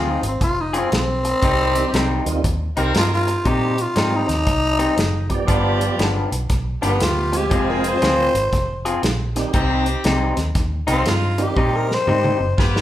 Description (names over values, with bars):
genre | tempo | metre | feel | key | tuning
electric blues shuffle | 118 BPM | 4/4 | swing 64% on 8ths | C minor | A4 = 440 Hz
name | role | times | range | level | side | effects
growling tenor saxophone | melody | 0.0-12.6 s | B3 to C5 | -21 LUFS | left 1 dB | none
electric guitar through a small old amp | riff | 0.0-12.6 s | G2 to Ab4 | -23 LUFS | left 2 dB | none
vintage muted fingered electric bass | bass | 0.0-12.8 s | F1 to Bb2 | -23 LUFS | equal | none
warm soul drum kit | drums | 0.2-12.8 s | hi-hat, kick drum, snare drum, toms | -23 LUFS | equal | none
clear horn section | stabs | 1.4-12.8 s | B3 to Bb4 | -26 LUFS | right 1 dB | none
tonewheel organ | accompaniment | 1.7-12.4 s | Eb3 to Ab5 | -26 LUFS | right 4 dB | slow rotary speaker, overdrive, chorus vibrato
room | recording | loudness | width
moderate large studio reverb, RT60 0.9 s | band playing live in one room | -17 LUFS | side -13 dB against mid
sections
0.0-12.8 A section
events
tenor saxophone solo 0.0-12.8; drum fill 11.6-12.8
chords
0.0 Fm; 1.4 Cm; 5.5 G7; 7.5 Fm; 9.5 Cm